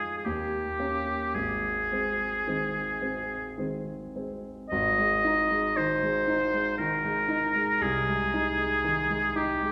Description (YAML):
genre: classical, romantic duo for oboe and grand piano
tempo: 52-60 BPM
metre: 3/4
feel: rubato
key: Ab major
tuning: A4 = 440 Hz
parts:
  - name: warm oboe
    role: melody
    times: 0.0-9.7 s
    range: G4 to Eb5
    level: -29 LUFS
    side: equal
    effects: none
  - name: warm grand piano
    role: accompaniment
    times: 0.0-9.7 s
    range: Ab1 to F4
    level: -34 LUFS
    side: equal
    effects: none
room: wet recital hall reverb, RT60 1.7 s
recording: heard from further back in the room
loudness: -28 LUFS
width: mono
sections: 0.0-4.7 A section; 4.7-9.7 A section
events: none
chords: 0.2 Eb7; 1.3 Ab; 7.8 Ab/C